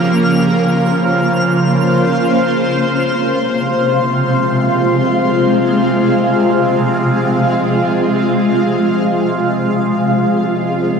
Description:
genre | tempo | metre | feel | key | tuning
ambient | free time | none | none | F minor | A4 = 439 Hz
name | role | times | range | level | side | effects
shimmering ambient pad | sustained chords | 0.0-11.0 s | C3 to C5 | -13 LUFS | equal | chorus, built-in reverb, phaser
bowed-like drone | drone | 0.0-11.0 s | F3 to F4 | -21 LUFS | right 2 dB | built-in reverb
twinkling granular texture | texture | 0.0-2.2 s | F6 | -24 LUFS | right 1 dB | built-in reverb
room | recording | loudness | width
wet cathedral reverb, RT60 6.4 s | cassette tape | -12 LUFS | side -6 dB against mid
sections
0.0-2.1 A section; 2.1-11.0 B section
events
none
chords
0.0 Bbmadd9; 2.1 Fm; 10.1 Gdim (rootless)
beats
free time

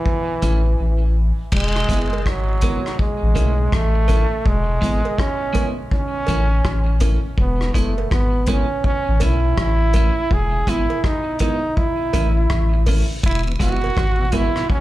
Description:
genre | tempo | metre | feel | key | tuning
roots reggae | 82 BPM | 4/4 | swing 62% on 16ths | E major | A4 = 443 Hz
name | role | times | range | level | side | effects
brilliant trombone | melody | 0.0-14.8 s | E3 to G#4 | -23 LUFS | right 2 dB | tape echo, plate reverb, slapback echo
vintage drum kit | drums | 0.1-14.8 s | crash cymbal, hi-hat, kick drum, rim click | -22 LUFS | equal | none
clean electric guitar | accompaniment | 0.4-14.5 s | G#3 to E4 | -29 LUFS | right 2 dB | wide subtle chorus, tape echo, plate reverb, slapback echo
soft dub sub bass | bass | 0.4-14.5 s | E1 to B1 | -18 LUFS | equal | none
jawbone-type rattle and cowbell | percussion | 1.5-14.5 s | none | -31 LUFS | right 8 dB | slapback echo
tonewheel organ | accompaniment | 13.5-14.6 s | E2 to E4 | -30 LUFS | left 2 dB | overdrive, chorus vibrato, slow rotary speaker, tape echo, slapback echo
room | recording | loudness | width
light reverb | live gig heard through the venue's PA, club reverb | -16 LUFS | side -16 dB against mid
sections
0.0-1.5 A section; 1.5-14.8 A section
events
drums muted 0.8-1.5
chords
0.1 A; 1.5 E; 3.0 A; 4.5 E; 5.9 A; 7.4 E; 8.8 A; 10.3 E; 11.8 A; 13.2 E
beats
0.06 0.79 | 1.52 2.25 2.99 3.72 | 4.45 5.18 5.92 6.65 | 7.38 8.11 8.84 9.57 | 10.31 11.04 11.77 12.50 | 13.23 13.96 14.70

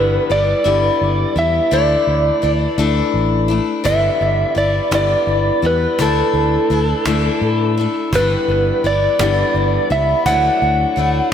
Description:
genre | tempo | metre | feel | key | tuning
folk rock and heartland rock | 56 BPM (dotted quarters) | 6/8 | straight | G major | A4 = 440 Hz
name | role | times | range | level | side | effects
electric slide guitar | melody | 0.0-11.3 s | A4 to F#5 | -17 LUFS | right 1 dB | ping-pong delay
picked steel-string acoustic guitar | accompaniment | 0.0-11.3 s | G2 to E4 | -19 LUFS | left 5 dB | none
fingered electric bass | bass | 0.0-11.2 s | G1 to A2 | -19 LUFS | right 1 dB | none
cajon | drums | 3.9-11.1 s | none | -28 LUFS | right 1 dB | none
room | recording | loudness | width
moderate lush hall reverb, RT60 2.7 s | dreamy mix soaked in reverb | -14 LUFS | side -8 dB against mid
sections
0.0-11.3 A section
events
none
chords
0.0 G6; 1.7 Dsus2; 3.9 G6; 6.0 Dsus2; 8.1 G6; 10.3 Dadd9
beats
0.66 | 1.73 2.79 | 3.86 4.92 | 5.99 7.06 | 8.12 9.19 | 10.26 11.32

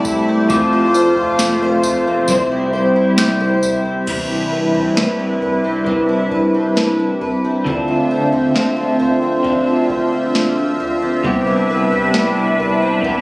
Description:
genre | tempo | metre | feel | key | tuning
dream pop | 67 BPM | 4/4 | straight | C major | A4 = 435 Hz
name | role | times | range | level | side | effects
electric guitar at the edge of break-up | accompaniment | 0.0-13.2 s | C3 to C5 | -19 LUFS | equal | tremolo, analog chorus
phased analog pad | sustained chords | 0.0-13.2 s | C2 to E5 | -18 LUFS | equal | phaser, chorus
fingerpicked twelve-string acoustic guitar | arpeggios | 0.0-13.2 s | C3 to C5 | -19 LUFS | left 1 dB | analog chorus, tape echo
soft vintage rhythm box | drums | 0.0-13.2 s | crash cymbal, kick drum, snare drum, tambourine, toms | -22 LUFS | equal | overdrive
glockenspiel with rubber mallets | texture | 0.5-4.5 s | D6 to G6 | -24 LUFS | left 2 dB | tape echo
room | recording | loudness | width
light reverb | recorded on a phone in the room, studio reverb, compression | -13 LUFS | side -23 dB against mid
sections
0.0-4.1 A section; 4.1-13.2 B section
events
none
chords
0.5 F; 2.3 C; 4.1 Cmaj7; 7.7 Dm7; 11.2 Cmaj7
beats
| 0.50 1.39 2.29 3.18 | 4.08 4.97 5.87 6.77 | 7.66 8.56 9.45 10.35 | 11.24 12.14 13.04

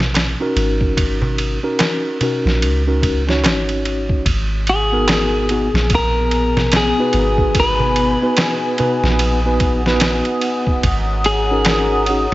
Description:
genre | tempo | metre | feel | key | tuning
trip hop | 73 BPM | 4/4 | swing 60% on 16ths | G# minor | A4 = 441 Hz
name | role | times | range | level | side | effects
soft 808-style bass | bass | 0.0-12.3 s | G#1 to C#2 | -20 LUFS | equal | none
trip hop sampler-style drum kit | drums | 0.0-12.3 s | kick drum, ride cymbal, snare drum | -20 LUFS | equal | studio reverb
darbuka | percussion | 0.1-11.9 s | none | -24 LUFS | right 1 dB | none
mellow tine electric piano | accompaniment | 0.4-12.2 s | B3 to C#5 | -20 LUFS | equal | slow stereo tremolo, harmonic tremolo, vintage 12-bit sampler grit, low-pass filter
dark analog pad | sustained chords | 4.3-12.3 s | B3 to D#6 | -23 LUFS | left 1 dB | chorus
clean electric guitar | melody | 4.7-12.0 s | G#4 to B4 | -19 LUFS | left 2 dB | spring reverb, tape echo
room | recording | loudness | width
light reverb | nothing above 7.9 kHz | -14 LUFS | side -17 dB against mid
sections
0.0-12.3 A section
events
none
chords
0.0 D#m7/G#; 4.3 G#m7; 10.8 D#m7/G#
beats
0.15 | 0.97 1.80 2.62 3.44 | 4.26 5.08 5.91 6.73 | 7.55 8.37 9.19 10.02 | 10.84 11.66

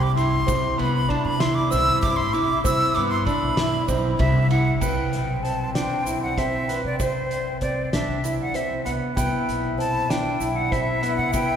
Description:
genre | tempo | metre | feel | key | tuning
progressive instrumental, band music in an uneven meter | 194 BPM (eighths) | 7/8 | straight | C lydian | A4 = 439 Hz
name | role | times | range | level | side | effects
breathy bright jazz flute | melody | 0.0-11.6 s | C5 to E6 | -25 LUFS | equal | none
clear trombone | second line | 0.0-11.6 s | C4 to G4 | -30 LUFS | left 4 dB | none
clear concert grand piano | arpeggios | 0.0-11.6 s | B3 to B4 | -27 LUFS | right 2 dB | none
upright bass | bass | 0.0-11.6 s | B1 to C3 | -26 LUFS | equal | none
loose indie drum kit | drums | 0.2-11.5 s | crash cymbal, hi-hat, kick drum, ride cymbal, snare drum | -30 LUFS | equal | none
egg shaker | percussion | 0.2-11.6 s | none | -40 LUFS | right 7 dB | none
room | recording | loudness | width
wet cathedral reverb, RT60 4.7 s | recorded in a church or concert hall | -20 LUFS | side -8 dB against mid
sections
0.0-4.8 A section; 4.8-11.6 B section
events
flute solo 0.0-4.8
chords
0.0 Cmaj7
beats
0.17 | 0.48 0.79 1.10 1.41 1.72 2.03 2.34 | 2.65 2.96 3.27 3.58 3.89 4.20 4.51 | 4.82 5.13 5.44 5.75 6.06 6.37 6.68 | 6.99 7.30 7.61 7.92 8.23 8.54 8.85 | 9.16 9.47 9.78 10.09 10.40 10.71 11.03 | 11.34

